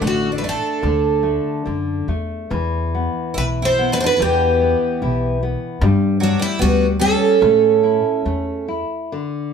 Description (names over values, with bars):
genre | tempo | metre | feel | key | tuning
fado-style ballad | 69-76 BPM | 2/4 | rubato | unclear | A4 = 441 Hz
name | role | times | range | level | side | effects
picked twelve-string acoustic guitar | second line | 0.0-8.7 s | F#3 to E4 | -23 LUFS | left 2 dB | none
nylon-string guitar | accompaniment | 0.0-9.5 s | D3 to E4 | -23 LUFS | left 4 dB | none
upright bass | bass | 0.0-8.8 s | A1 to A2 | -22 LUFS | left 1 dB | none
picked twelve-string acoustic guitar | melody | 0.1-8.7 s | D4 to C5 | -18 LUFS | right 6 dB | none
room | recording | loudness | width
moderate studio reverb, RT60 0.7 s | band playing live in one room | -16 LUFS | side -6 dB against mid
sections
0.0-9.1 A section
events
none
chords
0.0 D; 2.5 Em; 5.8 G5; 7.4 A